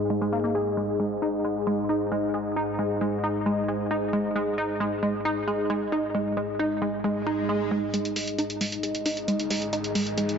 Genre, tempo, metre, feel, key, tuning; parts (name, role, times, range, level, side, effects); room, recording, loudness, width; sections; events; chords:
driving peak-time techno; 134 BPM; 4/4; straight; A4 = 437 Hz
deep dark ambient pad; drone; 0.0-10.4 s; G#2; -32 LUFS; left 1 dB; chorus, built-in reverb
warbly tape-like pad; texture; 0.0-10.4 s; D#4 to D#5; -29 LUFS; left 1 dB; chorus, built-in reverb, phaser
analog pluck; riff; 0.1-10.2 s; G#3 to G#4; -28 LUFS; right 1 dB; chorus, overdrive, dub echo
swell and riser; sound effects; 7.2-10.4 s; -36 LUFS; right 6 dB
electronic hi-hat; drums; 7.9-10.4 s; -32 LUFS; right 1 dB; overdrive, high-pass filter on hats, high-pass filter on room
wet lush hall reverb, RT60 2.1 s; dark, warm production, low-pass filter, nothing above 7.6 kHz; -24 LUFS; side -6 dB against mid
0.0-7.9 A section; 7.9-10.4 B section
filter sweep 0.0-7.9; swell 7.2-7.9; build-up 7.9-10.4; riser 7.9-10.4
0.0 G#5